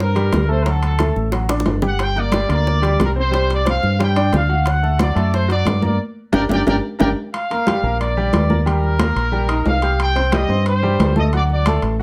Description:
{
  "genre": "latin, salsa",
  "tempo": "180 BPM",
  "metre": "4/4",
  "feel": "straight",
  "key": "G minor",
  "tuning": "A4 = 441 Hz",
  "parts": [
    { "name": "bright trumpet section", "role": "melody", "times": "0.0-11.8 s", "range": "A4 to G5", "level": "-25 LUFS", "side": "equal", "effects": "none" },
    { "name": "bright baby grand piano", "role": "accompaniment", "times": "0.0-12.0 s", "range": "F#3 to G6", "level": "-25 LUFS", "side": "equal", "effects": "none" },
    { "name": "fingered electric bass", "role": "bass", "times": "0.0-12.0 s", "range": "G1 to G2", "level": "-21 LUFS", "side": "equal", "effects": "none" },
    { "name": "bongos", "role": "percussion", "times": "0.0-7.1 s", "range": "none", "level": "-28 LUFS", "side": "equal", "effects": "none" },
    { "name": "congas", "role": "percussion", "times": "0.0-12.0 s", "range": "none", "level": "-27 LUFS", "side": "equal", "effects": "none" },
    { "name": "timbales", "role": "percussion", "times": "0.2-12.0 s", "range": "none", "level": "-28 LUFS", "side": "equal", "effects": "none" }
  ],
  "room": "light reverb",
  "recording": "none",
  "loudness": "-18 LUFS",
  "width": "mono",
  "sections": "0.0-7.3 A section; 7.3-12.0 A section",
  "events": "drum fill 1.5-2.0, 6.0-7.3; band accent 6.0-7.3",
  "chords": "0.0 C5; 0.7 D; 2.0 Gm; 3.3 Csus2; 4.7 D; 6.0 Gm; 7.3 Gm7; 8.7 Ebadd9; 10.0 Cm; 11.3 D"
}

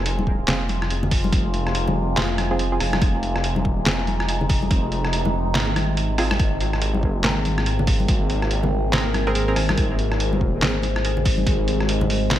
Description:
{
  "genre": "deep dubstep",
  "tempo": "142 BPM",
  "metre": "4/4",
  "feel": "swing 60% on 16ths, half-time",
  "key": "F minor",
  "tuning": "A4 = 439 Hz",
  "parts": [
    { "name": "overtone-sweeping drone", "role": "sustained chords", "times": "0.0-12.4 s", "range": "C3 to Ab4", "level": "-27 LUFS", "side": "left 1 dB", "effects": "chorus, built-in reverb" },
    { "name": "dark detuned saw bass", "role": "bass", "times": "0.0-12.4 s", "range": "F1 to Ab1", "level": "-23 LUFS", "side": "equal", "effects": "none" },
    { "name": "trip hop sampler-style drum kit", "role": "drums", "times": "0.1-12.4 s", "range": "handclaps, hi-hat, rim click, snare drum", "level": "-25 LUFS", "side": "equal", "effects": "none" },
    { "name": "congas", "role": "percussion", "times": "0.2-12.1 s", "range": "none", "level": "-29 LUFS", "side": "left 2 dB", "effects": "dub echo" },
    { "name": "electronic kick drum", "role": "drums", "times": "0.3-11.6 s", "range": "none", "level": "-22 LUFS", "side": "equal", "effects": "none" },
    { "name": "filtered dub chord stab", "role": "stabs", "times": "0.5-10.8 s", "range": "C4 to Bb4", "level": "-30 LUFS", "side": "right 2 dB", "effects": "chorus, dub echo" }
  ],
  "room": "light reverb",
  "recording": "none",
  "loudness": "-19 LUFS",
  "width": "side -12 dB against mid",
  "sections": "0.0-12.4 A section",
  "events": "none",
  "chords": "0.0 Fm; 6.4 Abadd9"
}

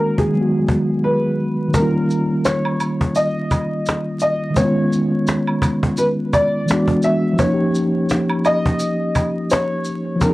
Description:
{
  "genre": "lo-fi hip hop",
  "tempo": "85 BPM",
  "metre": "4/4",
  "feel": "swing 57% on 16ths",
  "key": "unclear",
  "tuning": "A4 = 435 Hz",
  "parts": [
    { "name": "dark upright piano", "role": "melody", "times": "0.0-10.3 s", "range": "G#4 to E5", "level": "-22 LUFS", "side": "left 1 dB", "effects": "none" },
    { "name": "mellow tine electric piano", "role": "accompaniment", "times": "0.0-10.3 s", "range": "D#3 to G#4", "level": "-18 LUFS", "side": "equal", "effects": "medium stereo tremolo" },
    { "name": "cajon", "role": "drums", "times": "0.2-10.3 s", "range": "none", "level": "-20 LUFS", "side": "equal", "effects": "none" },
    { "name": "maracas and woodblock", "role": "percussion", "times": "1.7-10.3 s", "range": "none", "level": "-28 LUFS", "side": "right 2 dB", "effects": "none" }
  ],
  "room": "moderate studio reverb, RT60 0.5 s",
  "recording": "dry, gritty hardware recording, vinyl crackle",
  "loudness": "-16 LUFS",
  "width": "side -18 dB against mid",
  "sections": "0.0-1.7 A section; 1.7-10.3 B section",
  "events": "none",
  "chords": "0.3 G#m7; 1.7 D#9; 4.6 C#7; 6.7 E9; 7.4 D#9"
}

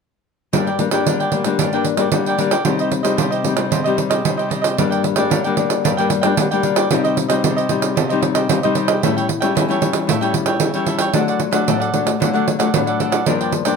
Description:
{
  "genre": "samba and choro",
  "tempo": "113 BPM",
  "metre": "4/4",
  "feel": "straight",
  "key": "G minor",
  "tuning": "A4 = 440 Hz",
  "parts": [
    { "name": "cavaquinho", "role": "accompaniment", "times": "0.5-13.8 s", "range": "D4 to G5", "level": "-22 LUFS", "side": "right 4 dB", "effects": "none" },
    { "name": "nylon-string guitar", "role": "accompaniment", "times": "0.5-13.8 s", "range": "G2 to E4", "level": "-19 LUFS", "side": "left 8 dB", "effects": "none" },
    { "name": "pandeiro", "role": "percussion", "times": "0.5-13.8 s", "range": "none", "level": "-20 LUFS", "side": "right 7 dB", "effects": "none" }
  ],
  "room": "moderate studio reverb, RT60 0.7 s",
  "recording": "close, detailed microphones",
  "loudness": "-15 LUFS",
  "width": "side -5 dB against mid",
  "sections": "0.5-4.8 A section; 4.8-13.8 B section",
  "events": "none",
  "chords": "0.5 Gm; 2.7 Cmadd9; 4.8 Gm; 6.9 Cmadd9; 9.0 A7; 11.1 D"
}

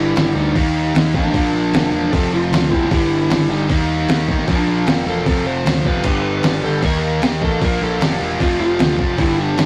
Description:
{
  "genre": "hard rock",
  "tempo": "153 BPM",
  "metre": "4/4",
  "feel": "straight",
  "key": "unclear",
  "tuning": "A4 = 444 Hz",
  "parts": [
    { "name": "biting lead guitar", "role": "melody", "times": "0.0-9.7 s", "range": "D4 to C5", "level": "-23 LUFS", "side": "equal", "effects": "overdrive" },
    { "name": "distorted electric guitar", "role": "riff", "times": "0.0-9.7 s", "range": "F2 to G4", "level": "-31 LUFS", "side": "equal", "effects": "none" },
    { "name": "heavy high-gain guitar", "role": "riff", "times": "0.0-9.7 s", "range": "F2 to Eb4", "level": "-28 LUFS", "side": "equal", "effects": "distortion" },
    { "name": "sludgy distorted guitar", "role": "riff", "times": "0.0-9.7 s", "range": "F2 to Eb4", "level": "-26 LUFS", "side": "equal", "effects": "overdrive" },
    { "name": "growling picked electric bass", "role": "bass", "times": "0.0-9.7 s", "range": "E1 to Eb2", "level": "-24 LUFS", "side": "equal", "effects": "overdrive" },
    { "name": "lo-fi sampler-style drum kit", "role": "drums", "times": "0.2-9.7 s", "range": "crash cymbal, hi-hat, kick drum, snare drum", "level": "-22 LUFS", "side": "equal", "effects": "overdrive" }
  ],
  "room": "moderate studio reverb, RT60 0.6 s",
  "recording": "rough rehearsal-room recording, tube saturation",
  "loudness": "-17 LUFS",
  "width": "mono",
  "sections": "0.0-9.7 A section",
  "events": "none",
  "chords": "0.0 G; 0.6 Eb; 1.3 Bb; 2.1 F; 2.9 G; 3.7 Eb; 4.5 Bb; 5.3 F; 6.0 G; 6.8 Eb; 7.6 Bb; 8.4 F"
}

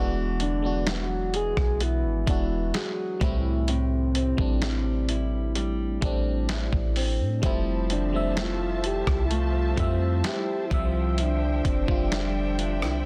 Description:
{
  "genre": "contemporary R&B",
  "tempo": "64 BPM",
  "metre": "4/4",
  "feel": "straight",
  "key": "unclear",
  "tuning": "A4 = 440 Hz",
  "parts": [
    { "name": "FM electric piano", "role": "accompaniment", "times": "0.0-13.1 s", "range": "F3 to E5", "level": "-34 LUFS", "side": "equal", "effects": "chorus" },
    { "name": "nylon-string guitar", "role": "arpeggios", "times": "0.0-13.1 s", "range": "A2 to G#4", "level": "-37 LUFS", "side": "equal", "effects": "none" },
    { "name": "soft 808-style bass", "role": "bass", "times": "0.0-13.1 s", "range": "E1 to A2", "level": "-30 LUFS", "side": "equal", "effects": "none" },
    { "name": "soft octave-layered synth lead", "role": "melody", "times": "0.4-13.1 s", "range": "C4 to G#4", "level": "-32 LUFS", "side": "equal", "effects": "chorus" },
    { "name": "dusty soul sampler-style drum kit", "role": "drums", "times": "0.4-13.0 s", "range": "hi-hat, kick drum, rim click, snare drum", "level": "-30 LUFS", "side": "equal", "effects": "vintage 12-bit sampler grit" },
    { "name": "muted studio string section", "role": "sustained chords", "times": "7.4-13.1 s", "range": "F3 to A5", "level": "-39 LUFS", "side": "equal", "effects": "none" }
  ],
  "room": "little or no reverb",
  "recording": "dense, heavily limited modern master",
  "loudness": "-26 LUFS",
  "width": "mono",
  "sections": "0.0-13.1 A section",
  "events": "none",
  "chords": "0.0 E7; 3.2 Am7; 7.4 Fmaj7; 10.7 Dm11"
}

